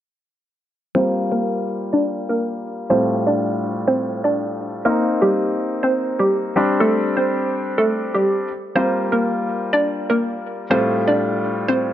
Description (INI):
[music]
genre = pop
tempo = 123 BPM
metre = 4/4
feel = straight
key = G minor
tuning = A4 = 440 Hz
[part]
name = hollow square pluck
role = melody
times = 0.9-11.8 s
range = G3 to D5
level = -20 LUFS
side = right 1 dB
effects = chorus, low-pass filter
[part]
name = clear concert grand piano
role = accompaniment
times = 0.9-11.9 s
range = A2 to F4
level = -22 LUFS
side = left 2 dB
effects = low-pass filter
[sound]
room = light reverb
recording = none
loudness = -17 LUFS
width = side -11 dB against mid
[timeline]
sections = 1.0-11.9 A section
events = filter sweep 1.0-11.9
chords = 1.0 Gm7; 2.9 Fadd9/A; 4.9 Cm7; 6.6 D7sus4; 8.8 Gm7; 10.7 Fadd9/A